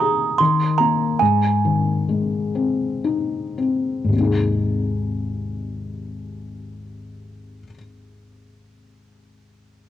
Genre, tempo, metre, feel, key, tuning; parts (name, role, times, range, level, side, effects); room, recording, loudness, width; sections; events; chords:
children's music, lullaby; 52-79 BPM; 3/4; straight; Ab major; A4 = 440 Hz
music box; melody; 0.0-3.0 s; Ab5 to C6; -19 LUFS; right 7 dB; cassette tape
felt-muted upright piano; accompaniment; 0.0-9.9 s; Ab1 to Ab4; -21 LUFS; left 3 dB; cassette tape
light reverb, studio ambience; home recording on cassette; -18 LUFS; side -11 dB against mid
0.0-4.1 A section; 4.1-7.5 B section
slowing down 0.0-4.1
0.4 Eb5; 1.2 Ab